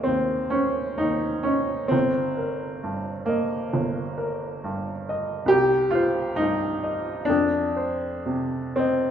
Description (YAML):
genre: classical, romantic nocturne for solo piano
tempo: 54-71 BPM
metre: 4/4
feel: rubato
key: unclear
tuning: A4 = 439 Hz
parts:
  - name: bright upright piano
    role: solo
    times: 0.0-9.1 s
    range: G1 to Eb5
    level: -22 LUFS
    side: equal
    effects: none
room: wet recital hall reverb, RT60 1.5 s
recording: none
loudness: -22 LUFS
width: side -9 dB against mid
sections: 0.0-9.1 A section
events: none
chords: 0.0 Ab; 1.9 Eb/G; 5.5 Cm; 7.3 F5